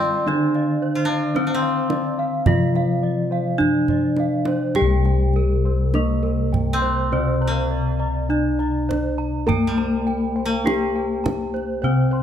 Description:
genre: Javanese gamelan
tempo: 51-57 BPM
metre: 4/4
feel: straight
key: C slendro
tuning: A4 = 439 Hz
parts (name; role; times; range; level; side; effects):
- gamelan-type bronze metallophone; melody; 0.0-12.2 s; Bb3-40c to Bb4-40c; -24 LUFS; left 1 dB; none
- koto; second line; 0.0-12.2 s; G3+20c to F4-20c; -27 LUFS; equal; none
- gamelan-type bronze metallophone; accompaniment; 0.0-12.2 s; C3 to Bb3-40c; -26 LUFS; left 3 dB; none
- gamelan-type bossed gongs; arpeggios; 0.0-12.2 s; Bb4-40c to C6; -31 LUFS; left 5 dB; none
- gamelan-type bronze metallophone; arpeggios; 0.0-12.2 s; Bb4-40c to Bb5-40c; -30 LUFS; right 8 dB; none
- gamelan-type bossed gongs; bass; 0.0-12.2 s; C2 to Bb4-40c; -23 LUFS; left 1 dB; none
- kendang; percussion; 0.0-11.7 s; none; -24 LUFS; right 4 dB; none
room: light reverb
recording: close, detailed microphones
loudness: -18 LUFS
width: side -9 dB against mid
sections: 0.0-4.8 A section; 4.8-12.2 B section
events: drum fill 3.6-4.8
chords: none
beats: | 0.28 1.36 2.46 3.59 | 4.76 5.94 7.12 8.30 | 9.48 10.66 11.84

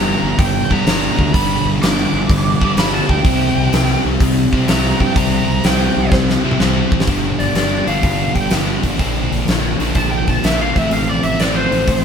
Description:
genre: blues rock power trio and southern rock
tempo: 125 BPM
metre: 4/4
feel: swing 68% on 8ths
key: unclear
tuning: A4 = 436 Hz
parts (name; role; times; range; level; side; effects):
- bluesy overdriven lead guitar; melody; 0.0-12.0 s; C5 to D6; -21 LUFS; right 2 dB; distortion, slapback echo
- sludgy distorted guitar; riff; 0.0-12.0 s; G2 to F4; -18 LUFS; left 1 dB; overdrive
- fuzz fingered electric bass; bass; 0.0-12.0 s; G1 to C3; -21 LUFS; equal; overdrive
- huge arena drum kit; drums; 0.4-12.0 s; hi-hat, kick drum, snare drum, toms; -18 LUFS; equal; none
room: moderate stone room reverb, RT60 1.1 s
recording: band playing live in one room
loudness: -13 LUFS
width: side -7 dB against mid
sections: 0.0-7.1 A section; 7.1-12.0 B section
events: lead electric guitar solo 0.0-7.1; drum fill 6.1-7.1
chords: 0.0 G; 3.2 C; 7.1 G; 9.0 Bb; 10.7 F/A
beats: 0.39 0.86 | 1.34 1.82 2.30 2.77 | 3.25 3.73 4.21 4.68 | 5.16 5.64 6.12 6.59 | 7.07 7.55 8.03 8.51 | 8.99 9.47 9.96 10.44 | 10.92 11.40 11.88

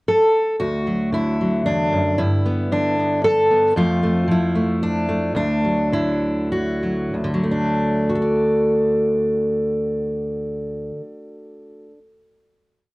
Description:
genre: folk, solo fingerstyle acoustic guitar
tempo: 93-115 BPM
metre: 3/4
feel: straight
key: unclear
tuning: A4 = 441 Hz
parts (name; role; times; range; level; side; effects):
- fingerpicked steel-string acoustic guitar; solo; 0.1-12.0 s; D2 to D5; -18 LUFS; equal; none
room: light reverb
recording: worn, warbling old tape, cassette tape, warbly pitch drift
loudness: -17 LUFS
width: side -23 dB against mid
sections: 0.0-0.6 pickup bar; 0.6-7.1 A section; 7.1-11.0 final chord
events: slowing down 3.8-7.1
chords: 0.0 N.C.; 0.6 D; 2.2 Gadd9; 3.8 F; 5.4 D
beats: 0.08 | 0.60 1.13 1.66 | 2.19 2.71 3.23 | 3.75 4.28 4.81 | 5.36 5.92 6.51 | 7.13 7.77 8.41 | 9.04 9.68 10.31

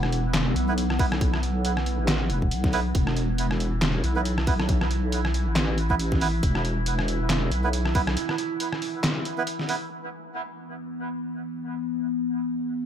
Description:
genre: deep dubstep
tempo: 138 BPM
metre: 4/4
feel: swing 57% on 16ths, half-time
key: unclear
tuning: A4 = 440 Hz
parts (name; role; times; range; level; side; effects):
- overtone-sweeping drone; sustained chords; 0.0-12.9 s; E3 to E4; -30 LUFS; equal; chorus, built-in reverb, phaser
- deep soft wobble bass; bass; 0.0-8.2 s; E1 to B1; -25 LUFS; equal; chorus
- trip hop sampler-style drum kit; drums; 0.0-9.8 s; handclaps, hi-hat, rim click, snare drum; -28 LUFS; equal; overdrive, small room ambience
- melodica; stabs; 0.7-9.8 s; B3 to B4; -32 LUFS; right 5 dB; dub echo
- electronic kick drum; drums; 1.0-8.0 s; none; -26 LUFS; equal; small room ambience
room: digital ambience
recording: echo-heavy mix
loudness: -23 LUFS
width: side -9 dB against mid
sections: 0.0-9.9 A section; 9.9-12.9 B section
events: drop 0.0-9.9; break 8.2-9.9; filter sweep on synth drone 9.9-12.9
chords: 0.0 E5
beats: 0.34 0.78 | 1.21 1.65 2.08 2.52 | 2.95 3.38 3.82 4.25 | 4.69 5.12 5.56 5.99 | 6.43 6.86 7.30 7.73 | 8.17 8.60 9.04 9.47 | 9.91 10.34 10.78 11.21 | 11.64 12.08 12.52

